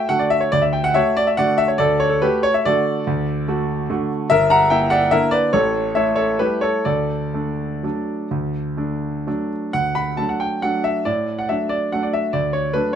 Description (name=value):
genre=classical, piano waltz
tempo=119-154 BPM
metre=3/4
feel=rubato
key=D major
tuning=A4 = 440 Hz
part: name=clear concert grand piano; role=solo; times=0.0-13.0 s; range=G1 to B5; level=-17 LUFS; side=equal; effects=none
room=light reverb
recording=close, detailed microphones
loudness=-17 LUFS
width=side -8 dB against mid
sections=0.0-9.7 A section; 9.7-13.0 B section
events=none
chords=0.0 D; 4.3 Em7b5/G; 5.5 A7; 6.9 D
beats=0.10 | 0.52 0.95 1.39 | 1.80 2.22 2.65 | 3.07 3.47 3.89 | 4.31 4.70 5.12 | 5.53 5.95 6.39 | 6.86 7.33 7.84 | 8.31 8.78 9.27 | 9.74 10.19 10.63 | 11.06 11.48 11.92 | 12.34 12.74